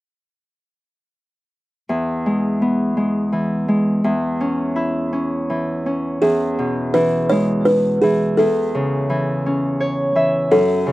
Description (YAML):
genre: children's music, lullaby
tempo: 56 BPM (dotted quarters)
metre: 6/8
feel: rubato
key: E major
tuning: A4 = 440 Hz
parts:
  - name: Celtic harp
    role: accompaniment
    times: 1.9-10.9 s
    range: E2 to E5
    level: -18 LUFS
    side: equal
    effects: none
  - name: buzzing kalimba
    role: melody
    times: 6.2-10.9 s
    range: G#4 to C#5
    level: -17 LUFS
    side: equal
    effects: slapback echo
room: light reverb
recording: recorded outdoors, with no room sound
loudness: -16 LUFS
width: side -17 dB against mid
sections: 1.9-6.2 A section; 6.2-10.9 B section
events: harp fill 9.4-10.5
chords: 1.9 E; 4.0 C#m/E; 6.2 E; 8.4 A/E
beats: | 1.89 2.97 | 4.04 5.13 | 6.22 7.31 | 8.38 9.44 | 10.51